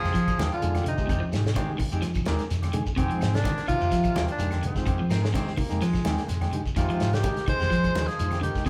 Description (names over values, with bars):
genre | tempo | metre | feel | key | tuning
afrobeat | 127 BPM | 4/4 | swing 54% on 16ths | F dorian | A4 = 440 Hz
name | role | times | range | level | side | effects
breathy tenor saxophone | melody | 0.0-8.7 s | C4 to C5 | -32 LUFS | equal | none
brilliant trombone | second line | 0.0-8.7 s | Ab2 to Ab3 | -39 LUFS | equal | none
electric guitar at the edge of break-up | arpeggios | 0.0-8.7 s | C3 to F3 | -34 LUFS | equal | tremolo
clean electric guitar | stabs | 0.0-8.7 s | Eb3 to G4 | -39 LUFS | equal | phaser
fingered electric bass | bass | 0.0-8.7 s | Eb2 to F3 | -31 LUFS | equal | none
shekere | percussion | 0.0-8.7 s | none | -43 LUFS | equal | none
warm soul drum kit | drums | 0.1-8.7 s | hi-hat, kick drum, snare drum | -33 LUFS | equal | none
congas | percussion | 0.1-8.6 s | none | -37 LUFS | equal | none
claves | percussion | 0.3-8.7 s | none | -53 LUFS | equal | none
combo organ | accompaniment | 0.6-8.7 s | Ab3 to Bb4 | -37 LUFS | equal | none
edgy baritone saxophone | second line | 5.1-6.6 s | Ab3 to C4 | -41 LUFS | equal | none
room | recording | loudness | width
wet large studio reverb, RT60 1.2 s | band playing live in one room | -26 LUFS | mono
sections
0.0-8.7 A section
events
none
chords
0.0 Fm9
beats
0.14 0.61 | 1.09 1.56 2.03 2.50 | 2.98 3.45 3.92 4.39 | 4.87 5.34 5.81 6.29 | 6.76 7.23 7.71 8.18 | 8.65